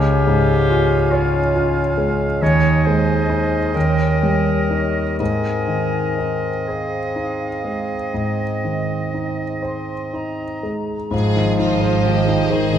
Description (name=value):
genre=classical, romantic movement for piano and orchestra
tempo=39-47 BPM (dotted quarters)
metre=12/8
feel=rubato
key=Ab major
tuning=A4 = 444 Hz
part: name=clear grand piano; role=melody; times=0.0-12.8 s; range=Db2 to Db5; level=-19 LUFS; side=equal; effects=none
part: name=bright oboe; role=second line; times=0.0-10.7 s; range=Eb5 to F5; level=-30 LUFS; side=right 2 dB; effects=none
part: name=clear clarinet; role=second line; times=0.0-9.6 s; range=F4 to Db5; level=-24 LUFS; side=left 2 dB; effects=none
part: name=silver concert flute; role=second line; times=0.0-11.1 s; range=Eb5 to C6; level=-30 LUFS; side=left 1 dB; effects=none
part: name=warm bassoon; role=accompaniment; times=0.0-12.8 s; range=Eb3 to Eb4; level=-26 LUFS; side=right 4 dB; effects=none
part: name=clear studio violin section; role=second line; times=11.1-12.8 s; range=F4 to Ab4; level=-26 LUFS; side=left 4 dB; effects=none
part: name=dark French horn section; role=sustained chords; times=11.1-12.8 s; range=Eb3 to F3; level=-24 LUFS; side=left 6 dB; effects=none
part: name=rich chamber double bass section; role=bass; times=11.1-12.8 s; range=Ab1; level=-24 LUFS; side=right 4 dB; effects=none
part: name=rich studio cello section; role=bass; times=11.1-12.8 s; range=Ab2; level=-25 LUFS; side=right 1 dB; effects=none
part: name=rich chamber violin section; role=melody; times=11.6-12.8 s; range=Eb5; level=-30 LUFS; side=left 5 dB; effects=none
part: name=rich chamber viola section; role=accompaniment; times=11.6-12.8 s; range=Ab4 to C5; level=-28 LUFS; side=equal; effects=none
room=moderate scoring stage reverb, RT60 2.0 s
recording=none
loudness=-17 LUFS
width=side -9 dB against mid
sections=0.0-11.1 A section; 11.1-12.8 A section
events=none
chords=0.0 Db; 2.4 Ab/Eb; 3.8 Eb7; 5.2 Ab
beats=1.11 2.41 3.75 | 5.20 6.68 8.14 9.63 | 11.13 12.50